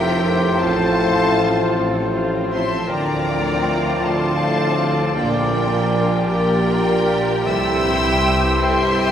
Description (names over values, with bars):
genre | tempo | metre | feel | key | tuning
classical, slow romantic movement for symphony orchestra | 53 BPM (dotted quarters) | 6/8 | rubato | F major | A4 = 441 Hz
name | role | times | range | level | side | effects
warm symphonic violin section | melody | 0.0-9.1 s | G5 to E6 | -26 LUFS | left 2 dB | none
bright large flute ensemble | second line | 0.0-9.1 s | D5 to C6 | -26 LUFS | left 1 dB | none
rich symphonic violin section | second line | 0.0-9.1 s | Bb4 to G5 | -26 LUFS | left 1 dB | none
warm clarinet | second line | 0.0-9.1 s | G4 to E5 | -26 LUFS | left 1 dB | none
rich symphonic viola section | accompaniment | 0.0-9.1 s | G3 to A4 | -27 LUFS | right 1 dB | none
bright trombone section | sustained chords | 0.0-9.1 s | G2 to G3 | -26 LUFS | right 2 dB | none
mellow French horn section | sustained chords | 0.0-9.1 s | Bb3 to G4 | -26 LUFS | left 1 dB | none
dark trumpet section | stabs | 0.0-9.1 s | C5 to D5 | -26 LUFS | left 2 dB | none
mellow tuba | bass | 0.0-9.1 s | F1 to D2 | -26 LUFS | right 1 dB | none
rich symphonic double bass section | bass | 0.0-9.1 s | F1 to D2 | -25 LUFS | right 1 dB | none
warm symphonic cello section | bass | 0.0-9.1 s | D4 to A4 | -29 LUFS | right 1 dB | none
timpani | percussion | 7.5-8.5 s | none | barely audible | none | none
room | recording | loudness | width
wet church reverb, RT60 3.0 s | recorded in a church or concert hall | -16 LUFS | side -9 dB against mid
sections
0.0-9.1 A section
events
none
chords
0.0 F; 0.6 F/A; 2.9 Dm7; 5.2 Gm7/Bb; 7.5 C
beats
| 0.61 1.77 | 2.90 4.02 | 5.15 6.26 | 7.46 8.59